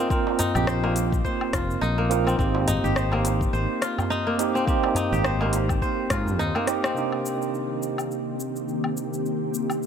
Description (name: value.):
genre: organic downtempo.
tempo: 105 BPM.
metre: 4/4.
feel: swing 57% on 16ths.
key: C minor.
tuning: A4 = 440 Hz.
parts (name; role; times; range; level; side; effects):
tine electric piano; accompaniment; 0.0-9.9 s; C3 to Bb4; -27 LUFS; right 4 dB; medium stereo tremolo, sidechain pumping, tape echo.
kora; arpeggios; 0.0-8.6 s; Bb3 to C5; -28 LUFS; left 1 dB; tape echo.
deep house drum kit; drums; 0.1-9.9 s; hi-hat, rim click, shaker, woodblock; -32 LUFS; left 2 dB; small room reverb.
electronic kick drum; drums; 0.1-6.2 s; none; -27 LUFS; left 1 dB; small room reverb.
darbuka; percussion; 0.3-6.9 s; none; -33 LUFS; right 1 dB; none.
fretless electric bass; bass; 0.6-6.5 s; F1 to Ab2; -25 LUFS; left 1 dB; sidechain pumping.
ethereal airy pad; sustained chords; 7.5-9.9 s; Eb3 to G4; -29 LUFS; left 2 dB; ensemble chorus, built-in reverb, sidechain pumping.
room: light reverb.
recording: none.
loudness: -22 LUFS.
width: side -7 dB against mid.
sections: 0.0-7.0 A section; 7.0-9.9 B section.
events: drum fill 6.7.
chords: 0.0 Bbsus2; 2.4 Abmaj7; 7.0 Cm7.